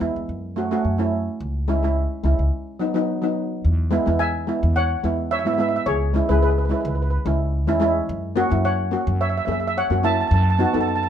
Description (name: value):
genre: calypso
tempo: 108 BPM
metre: 4/4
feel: swing 53% on 16ths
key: E major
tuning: A4 = 440 Hz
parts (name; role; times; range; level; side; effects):
- steel pan; accompaniment; 0.0-11.0 s; F#3 to A4; -23 LUFS; equal; none
- upright bass; bass; 0.0-11.1 s; C#2 to G#2; -22 LUFS; equal; none
- steel pan; melody; 4.2-11.1 s; G#4 to A5; -23 LUFS; right 1 dB; none
room: moderate studio reverb, RT60 0.7 s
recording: minimal, uncompressed stereo recording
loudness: -19 LUFS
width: side -9 dB against mid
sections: 0.0-3.6 A section; 3.6-11.1 B section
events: break 2.5-3.6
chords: 0.3 F#m; 1.4 C#m; 2.5 B; 3.6 E6; 5.9 C#m; 8.1 F#7; 10.3 B7/F#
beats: 0.29 0.85 | 1.41 1.97 2.52 3.08 | 3.64 4.20 4.75 5.31 | 5.87 6.42 6.98 7.54 | 8.09 8.65 9.21 9.76 | 10.32 10.87